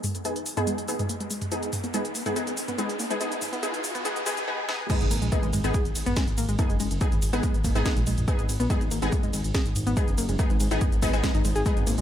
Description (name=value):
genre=driving peak-time techno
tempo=142 BPM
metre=4/4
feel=straight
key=G# minor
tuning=A4 = 440 Hz
part: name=warbly dusty pluck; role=riff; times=0.0-12.0 s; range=G#3 to G#4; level=-32 LUFS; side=equal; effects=chorus, tube saturation, sidechain pumping, dub echo
part: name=techno drum kit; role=drums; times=0.0-12.0 s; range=crash cymbal, hi-hat, ride cymbal, shaker, snare drum, toms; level=-32 LUFS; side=equal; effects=overdrive
part: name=riser and impact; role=sound effects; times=0.2-6.6 s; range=none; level=-36 LUFS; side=equal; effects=none
part: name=rave stab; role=stabs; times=0.2-11.8 s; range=B3 to G#4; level=-30 LUFS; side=left 1 dB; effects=chorus, built-in reverb, sidechain pumping, dub echo
part: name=electronic kick drum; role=drums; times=4.9-11.7 s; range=none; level=-26 LUFS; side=equal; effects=none
part: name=dark detuned saw bass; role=bass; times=5.0-12.0 s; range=F#1 to A#1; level=-28 LUFS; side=equal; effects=tube saturation, sidechain pumping
room=light reverb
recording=high-pass filter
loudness=-23 LUFS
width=side -10 dB against mid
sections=0.0-4.9 A section; 4.9-12.0 B section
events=build-up 0.0-4.9; riser 0.2-4.5; filter sweep on synth arpeggio sound 0.0-4.9; filter sweep on synth stab 0.0-4.9; filter sweep 0.0-4.9; drum fill 4.7; drop 4.9-12.0; impact 4.9-6.6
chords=0.0 G#m